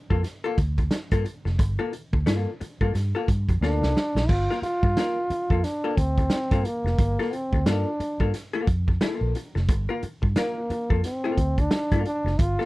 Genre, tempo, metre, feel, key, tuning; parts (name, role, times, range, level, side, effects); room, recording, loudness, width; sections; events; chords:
funk; 89 BPM; 4/4; swing 60% on 16ths; G minor; A4 = 445 Hz
vintage hollow-body jazz guitar; accompaniment; 0.1-12.7 s; Bb3 to Bb4; -29 LUFS; left 4 dB
vintage muted fingered electric bass; bass; 0.1-12.6 s; F1 to G2; -25 LUFS; equal
raw garage drum kit; drums; 0.1-12.7 s; crash cymbal, hi-hat, kick drum, snare drum; -25 LUFS; equal
breathy trombone; melody; 3.6-12.7 s; Bb3 to F4; -27 LUFS; equal
little or no reverb; dry, close 1970s-style studio recording; -22 LUFS; side -20 dB against mid
0.0-4.3 A section; 4.3-12.7 B section
drum fill 3.6-4.3
0.0 Gm9